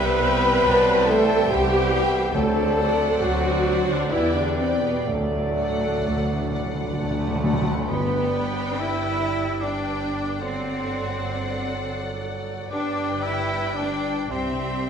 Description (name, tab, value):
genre	classical, slow romantic movement for symphony orchestra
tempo	61-80 BPM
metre	3/4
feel	rubato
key	G major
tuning	A4 = 439 Hz
part	dark symphonic violin section	melody	0.0-14.9 s	F#5 to G5	-34 LUFS	left 5 dB	none
part	clear symphonic violin section	second line	0.0-14.9 s	B4 to G5	-36 LUFS	left 3 dB	none
part	dark clarinet	second line	0.0-14.9 s	A4 to E5	-36 LUFS	equal	none
part	mellow cor anglais	second line	0.0-14.9 s	A3 to A5	-33 LUFS	right 1 dB	none
part	mellow hollow concert flute	second line	0.0-14.9 s	A4 to E6	-31 LUFS	left 1 dB	none
part	warm bassoon	accompaniment	0.0-14.9 s	E3 to B3	-33 LUFS	right 3 dB	none
part	warm symphonic viola section	accompaniment	0.0-14.9 s	A3 to B4	-28 LUFS	right 1 dB	none
part	dark French horn section	sustained chords	0.0-14.9 s	A3 to B4	-30 LUFS	left 5 dB	none
part	warm trombone section	sustained chords	0.0-7.5 s	E3 to C4	-33 LUFS	right 3 dB	none
part	clear trumpet section	stabs	0.0-7.5 s	C5 to D5	-31 LUFS	right 3 dB	none
part	bright symphonic cello section	bass	0.0-14.9 s	A2 to E4	-28 LUFS	right 1 dB	none
part	rich symphonic double bass section	bass	0.0-14.9 s	G1 to E2	-29 LUFS	right 1 dB	none
part	timpani	percussion	2.3-9.2 s	G2 to D3	-28 LUFS	equal	none
room	wet scoring stage reverb, RT60 1.8 s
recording	minimal, uncompressed stereo recording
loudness	-20 LUFS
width	side -7 dB against mid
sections	0.0-7.9 A section; 7.9-14.9 B section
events	timpani fill 5.1-7.9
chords	0.0 Cmaj7; 2.3 D7; 4.1 Em7; 5.1 D; 7.9 G; 10.4 D7/G; 12.7 G; 14.3 C